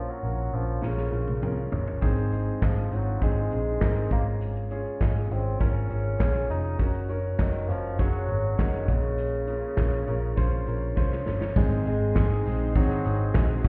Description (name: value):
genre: piano-driven pop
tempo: 101 BPM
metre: 4/4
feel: straight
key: Ab mixolydian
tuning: A4 = 440 Hz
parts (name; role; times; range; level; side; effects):
- warm bassoon; melody; 0.0-13.5 s; Db3 to Eb4; -35 LUFS; equal; none
- warm concert grand piano; accompaniment; 0.0-13.7 s; Ab2 to C5; -35 LUFS; equal; none
- vintage muted picked electric bass; bass; 0.0-13.7 s; F1 to C2; -30 LUFS; equal; none
- natural country drum kit; drums; 0.8-13.7 s; crash cymbal, handclaps, hi-hat, kick drum, snare drum, toms; -28 LUFS; equal; none
- lush unison pad; sustained chords; 11.6-13.7 s; Ab4 to C6; -47 LUFS; equal; none
- twelve-string electric guitar; riff; 11.6-13.7 s; Ab2 to Ab4; -36 LUFS; equal; analog chorus
- tambourine; percussion; 11.6-13.7 s; none; -72 LUFS; equal; none
room: light reverb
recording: heard muffled through a wall, stone room reverb, EQ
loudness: -26 LUFS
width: mono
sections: 0.0-11.6 A section; 11.6-13.7 B section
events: drum fill 0.8-2.0, 11.0-11.6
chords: 0.0 Bbm; 2.0 Ab; 4.1 Db/Ab; 6.8 Gb; 8.9 Bbm; 11.6 Ab